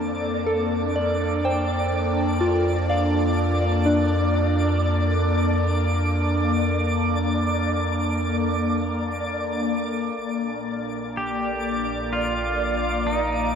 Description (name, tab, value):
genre	ambient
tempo	62 BPM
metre	3/4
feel	straight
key	unclear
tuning	A4 = 442 Hz
part	airy breathy pad	sustained chords	0.0-13.6 s	Bb2 to F5	-25 LUFS	left 1 dB	chorus, phaser
part	round analog bass	bass	0.0-13.6 s	Bb1 to F2	-26 LUFS	equal	none
part	twinkling granular texture	texture	0.0-13.6 s	D5 to D6	-29 LUFS	equal	built-in reverb
part	soft synth bell	arpeggios	0.5-10.2 s	D4 to G5	-26 LUFS	left 1 dB	chorus, diffuse ambient delay
part	pedal steel guitar	melody	11.2-13.6 s	Eb4 to G4	-26 LUFS	equal	diffuse ambient delay
room	wet cathedral reverb, RT60 5.5 s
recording	in a vast, echoing space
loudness	-21 LUFS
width	side -7 dB against mid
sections	0.0-10.2 A section; 10.2-13.6 B section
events	none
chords	0.0 Bbmaj7/F; 10.2 Bb